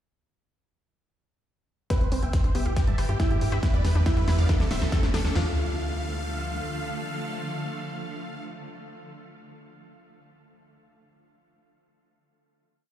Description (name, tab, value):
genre	uplifting trance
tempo	139 BPM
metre	4/4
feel	straight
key	D dorian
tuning	A4 = 440 Hz
part	big supersaw lead	melody	1.9-8.4 s	G4 to A5	-37 LUFS	equal	phaser, sidechain pumping, low-pass filter, dub echo
part	dark grand piano	second line	1.9-8.4 s	E4 to B4	-36 LUFS	equal	dub echo
part	wide unison pluck	second line	1.9-8.4 s	G4 to A5	-44 LUFS	equal	none
part	shimmering ambient pad	sustained chords	3.0-8.4 s	D3 to A4	-36 LUFS	equal	chorus, built-in reverb, sidechain pumping
part	analog pluck	arpeggios	1.9-5.6 s	G3 to G5	-38 LUFS	left 1 dB	chorus, sidechain pumping, tape echo
part	big-room dance drum kit	drums	1.9-5.5 s	hi-hat, kick drum, snare drum, toms	-25 LUFS	equal	none
part	big-room dance drum kit	drums	1.9-5.3 s	hi-hat, snare drum	-35 LUFS	equal	sidechain pumping on hats
part	riser	sound effects	3.1-5.4 s	none	-40 LUFS	equal	none
part	tight sequencer bass	bass	2.0-6.6 s	D1 to G2	-26 LUFS	equal	sidechain pumping
room	little or no reverb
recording	played on a big sound system in a bare room, large studio reverb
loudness	-24 LUFS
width	side -11 dB against mid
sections	1.9-5.4 build; 5.4-8.8 final chord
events	build-up 1.9-5.4; drum fill 1.9-5.4; filter sweep on supersaw synth 1.9-5.4; filter sweep on synth arpeggio sound 1.9-5.4; riser 3.1-5.4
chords	1.9 Cmaj7; 2.8 G6; 3.6 Em; 4.5 Dm